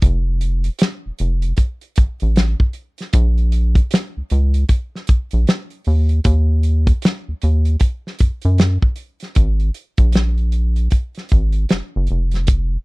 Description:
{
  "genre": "R&B, neo-soul",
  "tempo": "77 BPM",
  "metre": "4/4",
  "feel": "swing 62% on 16ths",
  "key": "unclear",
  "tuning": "A4 = 440 Hz",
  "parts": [
    { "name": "rubbery square bass", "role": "bass", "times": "0.0-12.8 s", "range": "F1 to F#2", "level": "-16 LUFS", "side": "equal", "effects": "transformer saturation" },
    { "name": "warm soul drum kit", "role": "drums", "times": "0.0-12.7 s", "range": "hi-hat, kick drum, snare drum", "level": "-15 LUFS", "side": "equal", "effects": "none" }
  ],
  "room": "little or no reverb",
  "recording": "dry, close 1970s-style studio recording",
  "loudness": "-15 LUFS",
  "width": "side -25 dB against mid",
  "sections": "0.0-9.4 A section; 9.4-12.8 B section",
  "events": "none",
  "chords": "none"
}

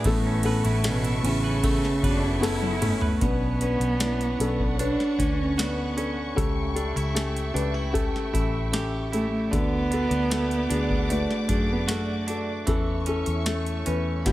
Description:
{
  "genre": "pop ballad",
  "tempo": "76 BPM",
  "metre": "4/4",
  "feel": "straight",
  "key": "A major",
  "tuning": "A4 = 439 Hz",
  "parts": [
    { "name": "dark cello", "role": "melody", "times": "0.0-12.5 s", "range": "A2 to D4", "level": "-27 LUFS", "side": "right 1 dB", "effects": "none" },
    { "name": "dark upright piano", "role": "accompaniment", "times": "0.0-14.3 s", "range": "G2 to C#5", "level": "-30 LUFS", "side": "left 2 dB", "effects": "none" },
    { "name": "warm studio string section", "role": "sustained chords", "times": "0.0-14.3 s", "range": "A3 to D6", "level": "-36 LUFS", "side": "left 1 dB", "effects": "none" },
    { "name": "direct-recorded clean electric guitar", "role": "arpeggios", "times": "0.0-14.3 s", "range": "G2 to B4", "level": "-35 LUFS", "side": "right 5 dB", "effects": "none" },
    { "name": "booming analog drum machine", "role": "drums", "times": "0.0-14.3 s", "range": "hi-hat, kick drum, ride cymbal, snare drum, toms", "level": "-29 LUFS", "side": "equal", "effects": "none" },
    { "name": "vintage muted fingered electric bass", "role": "bass", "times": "0.1-14.3 s", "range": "F#1 to F#2", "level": "-29 LUFS", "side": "equal", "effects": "none" },
    { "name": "warm chamber cello section", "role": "second line", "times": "2.0-3.2 s", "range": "D4 to E4", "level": "-35 LUFS", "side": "equal", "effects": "none" }
  ],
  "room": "studio reverb",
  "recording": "none",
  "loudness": "-22 LUFS",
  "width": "side -15 dB against mid",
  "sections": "0.0-3.2 A section; 3.2-14.3 B section",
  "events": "drum fill 2.4-3.2",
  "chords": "0.1 Aadd9; 3.2 Bmadd9; 6.4 A7/C#; 9.5 D; 12.7 A/E"
}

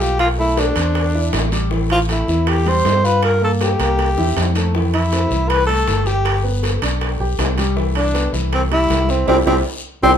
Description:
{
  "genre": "Afro-Cuban jazz",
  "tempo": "158 BPM",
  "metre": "4/4",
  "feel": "straight",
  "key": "C major",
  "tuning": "A4 = 440 Hz",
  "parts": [
    { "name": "breathy tenor saxophone", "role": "melody", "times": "0.0-10.1 s", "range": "C4 to C5", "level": "-18 LUFS", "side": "equal", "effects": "none" },
    { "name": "warm grand piano", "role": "accompaniment", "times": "0.0-10.2 s", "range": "E3 to G5", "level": "-23 LUFS", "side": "left 1 dB", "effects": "none" },
    { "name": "fingered electric bass", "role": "bass", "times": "0.0-10.2 s", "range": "G1 to G2", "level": "-19 LUFS", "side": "equal", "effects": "none" },
    { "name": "bongos", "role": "percussion", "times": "0.0-10.1 s", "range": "none", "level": "-26 LUFS", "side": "left 4 dB", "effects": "none" },
    { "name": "guiro", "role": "percussion", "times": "0.0-10.1 s", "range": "none", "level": "-31 LUFS", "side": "left 4 dB", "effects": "none" },
    { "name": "timbales", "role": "percussion", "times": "0.2-10.1 s", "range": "none", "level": "-25 LUFS", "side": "right 6 dB", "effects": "none" }
  ],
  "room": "light reverb",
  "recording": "minimal, uncompressed stereo recording",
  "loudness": "-15 LUFS",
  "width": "side -8 dB against mid",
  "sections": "0.0-10.2 A section",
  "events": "drum fill 3.8-4.7, 9.8-10.2; band accent 9.3-10.2",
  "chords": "0.2 Bm7b5; 0.9 Amadd11; 1.7 Am7; 3.2 Gm7; 4.0 C7; 4.7 Fmaj9; 6.3 G; 7.8 Cmaj7"
}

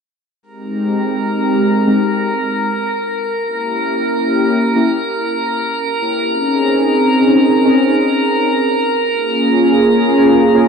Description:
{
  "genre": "drum and bass",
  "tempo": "free time",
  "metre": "none",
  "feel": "none",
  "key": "unclear",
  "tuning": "A4 = 439 Hz",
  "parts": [
    { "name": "lush unison pad", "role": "sustained chords", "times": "0.7-10.6 s", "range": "Ab3 to Ab4", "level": "-14 LUFS", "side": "equal", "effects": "chorus, vintage 12-bit sampler grit" },
    { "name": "drifting glass-harmonics texture", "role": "texture", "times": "0.7-10.7 s", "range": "Bb4 to Bb5", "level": "-18 LUFS", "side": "right 1 dB", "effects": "chorus, built-in reverb" }
  ],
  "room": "moderate plate reverb, RT60 3.7 s",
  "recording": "none",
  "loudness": "-12 LUFS",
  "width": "side -6 dB against mid",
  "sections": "0.4-10.7 A section",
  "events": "filter sweep on analog synth pad 0.4-10.7",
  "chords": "0.4 Abmaj9; 3.3 Bbdim7; 6.2 Bbm11; 9.1 Bbm7"
}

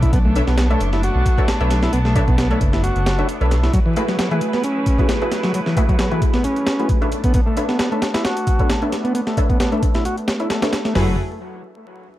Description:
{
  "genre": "breakbeat, breaks",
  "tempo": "133 BPM",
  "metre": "4/4",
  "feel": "swing 54% on 16ths",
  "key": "unclear",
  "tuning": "A4 = 440 Hz",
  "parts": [
    { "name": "clear studio string section", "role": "sustained chords", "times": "0.0-11.2 s", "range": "F#3 to B4", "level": "-27 LUFS", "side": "right 1 dB", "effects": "sidechain pumping, low-pass filter" },
    { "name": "combo organ", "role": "riff", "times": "0.0-11.2 s", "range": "E3 to F#4", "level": "-23 LUFS", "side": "equal", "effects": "low-pass filter, dub echo" },
    { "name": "orchestra-hit-like synth stab", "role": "stabs", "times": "0.0-11.1 s", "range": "A3 to E5", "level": "-25 LUFS", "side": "left 1 dB", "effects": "built-in reverb, dub echo" },
    { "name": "dark detuned saw bass", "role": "bass", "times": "0.0-3.7, 11.0-11.2 s", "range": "F#1 to B1", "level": "-18 LUFS", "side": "equal", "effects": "none" },
    { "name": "breakbeat sampler-style drum kit", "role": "drums", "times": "0.0-11.1 s", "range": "hi-hat, kick drum, snare drum, toms", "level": "-19 LUFS", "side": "equal", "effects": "studio ambience" },
    { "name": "electronic hi-hat", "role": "drums", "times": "0.0-10.9 s", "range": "none", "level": "-42 LUFS", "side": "right 1 dB", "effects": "none" }
  ],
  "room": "light reverb",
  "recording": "vinyl crackle",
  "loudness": "-16 LUFS",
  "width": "side -14 dB against mid",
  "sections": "0.0-11.0 A section; 11.0-12.2 B section",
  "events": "filter sweep on transistor combo organ 0.0-11.0; filter sweep on synth stab 0.0-11.0; filter sweep on string section 0.0-11.0",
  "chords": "0.0 Bm11; 3.7 F#m11; 7.1 Bm11; 11.0 F#m11"
}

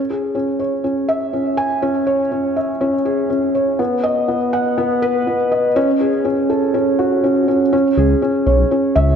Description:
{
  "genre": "piano and strings electronica",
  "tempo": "122 BPM",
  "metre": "4/4",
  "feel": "straight",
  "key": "C# minor",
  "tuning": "A4 = 435 Hz",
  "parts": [
    { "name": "felt-muted upright piano", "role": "riff", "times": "0.1-9.2 s", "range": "B3 to G#5", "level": "-15 LUFS", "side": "equal", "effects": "digital delay" },
    { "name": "dark detuned saw bass", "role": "bass", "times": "8.0-9.1 s", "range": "B1 to C#2", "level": "-15 LUFS", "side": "equal", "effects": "none" }
  ],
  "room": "wet lush hall reverb, RT60 2.4 s",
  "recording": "none",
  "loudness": "-15 LUFS",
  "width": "side -7 dB against mid",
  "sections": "0.0-7.7 A section; 7.7-9.2 B section",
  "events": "build-up 0.0-7.7; drop 7.7-9.2",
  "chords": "0.0 C#m; 3.8 B; 5.8 F#madd9/C#; 7.7 C#m"
}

